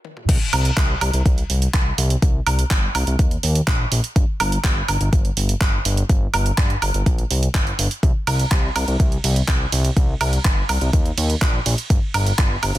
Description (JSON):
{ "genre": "progressive house", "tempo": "124 BPM", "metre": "4/4", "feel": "straight", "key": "unclear", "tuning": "A4 = 441 Hz", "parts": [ { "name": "house drum kit", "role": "drums", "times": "0.0-12.8 s", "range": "crash cymbal, handclaps, hi-hat, ride cymbal, toms, woodblock", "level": "-23 LUFS", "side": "right 2 dB", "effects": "sidechain pumping on hats, sidechain pumping on perc, sidechain pumping on toms, sidechain pumping on cymbals" }, { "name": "fat analog bass", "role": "bass", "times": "0.3-12.8 s", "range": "G1 to G2", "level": "-21 LUFS", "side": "equal", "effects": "sidechain pumping" }, { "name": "electronic kick drum", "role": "drums", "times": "0.3-12.5 s", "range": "none", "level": "-18 LUFS", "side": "equal", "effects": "none" } ], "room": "little or no reverb", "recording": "dense, heavily limited modern master, high-pass filter", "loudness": "-17 LUFS", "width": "side -15 dB against mid", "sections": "0.3-12.8 A section", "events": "stop 0.0; drum fill 0.0; drop 0.3-12.8", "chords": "none", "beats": "| 0.29 0.77 1.26 1.74 | 2.22 2.71 3.19 3.67 | 4.16 4.64 5.13 5.61 | 6.09 6.58 7.06 7.55 | 8.03 8.51 9.00 9.48 | 9.97 10.45 10.93 11.42 | 11.90 12.38" }